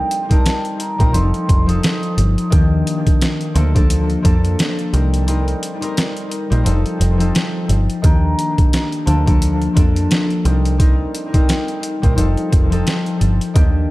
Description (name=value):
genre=hip hop, boom-bap hip-hop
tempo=87 BPM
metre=4/4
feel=swing 58% on 16ths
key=unclear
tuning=A4 = 444 Hz
part: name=vibraphone with soft mallets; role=melody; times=0.0-2.5, 8.0-9.2 s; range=G5 to Eb6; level=-26 LUFS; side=right 1 dB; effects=dub echo
part: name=concert harp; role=accompaniment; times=0.0-13.9 s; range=Eb3 to Bb4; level=-20 LUFS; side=left 2 dB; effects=cassette tape, dub echo
part: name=boom bap sampler-style drum kit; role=drums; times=0.1-13.7 s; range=hi-hat, kick drum, snare drum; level=-16 LUFS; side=equal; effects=none
part: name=deep dub picked electric bass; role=bass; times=1.0-13.9 s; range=F1 to F2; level=-16 LUFS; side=equal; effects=none
room=digital ambience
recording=echo-heavy mix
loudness=-14 LUFS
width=side -18 dB against mid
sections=0.0-13.9 A section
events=break 5.3-8.0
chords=0.0 Cm7; 1.1 F7; 2.5 Ebmaj7; 3.6 Bbmaj7/D; 4.9 Cm7; 6.7 F7; 8.0 Ebmaj7; 9.1 Bbmaj7/D; 10.5 Cm7; 12.2 F7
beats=0.45 1.14 1.83 | 2.52 3.21 3.90 4.59 | 5.28 5.97 6.66 7.35 | 8.04 8.73 9.42 10.11 | 10.80 11.49 12.18 12.87 | 13.56